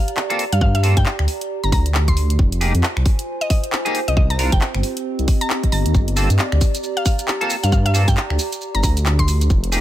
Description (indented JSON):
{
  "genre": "UK garage, two-step garage",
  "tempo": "135 BPM",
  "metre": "4/4",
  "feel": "swing 60% on 16ths",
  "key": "G phrygian",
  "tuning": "A4 = 438 Hz",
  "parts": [
    { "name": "mallet-like synth pluck", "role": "melody", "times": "0.0-9.6 s", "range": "Eb5 to C6", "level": "-26 LUFS", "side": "left 1 dB", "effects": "chorus, digital delay" },
    { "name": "warbly tape-like pad", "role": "texture", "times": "0.0-9.8 s", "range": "C4 to Bb5", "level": "-27 LUFS", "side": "right 2 dB", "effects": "chorus, built-in reverb, sidechain pumping" },
    { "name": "garage drum kit", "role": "drums", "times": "0.1-9.8 s", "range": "finger snaps, handclaps, hi-hat, shaker", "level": "-25 LUFS", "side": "equal", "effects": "none" },
    { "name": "clean electric guitar", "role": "stabs", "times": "0.3-9.8 s", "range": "Bb3 to Bb4", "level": "-24 LUFS", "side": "equal", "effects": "analog chorus, digital delay" },
    { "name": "dark detuned saw bass", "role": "bass", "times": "0.5-9.8 s", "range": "F1 to G2", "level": "-17 LUFS", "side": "equal", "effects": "none" },
    { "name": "electronic kick drum", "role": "drums", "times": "0.6-9.6 s", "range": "none", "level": "-17 LUFS", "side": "equal", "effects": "none" }
  ],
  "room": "digital ambience",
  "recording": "none",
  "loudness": "-16 LUFS",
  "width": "side -13 dB against mid",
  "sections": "0.0-9.8 A section",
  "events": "none",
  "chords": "0.0 Gm11; 2.4 Fm11; 4.2 Cm11; 5.9 Gm11"
}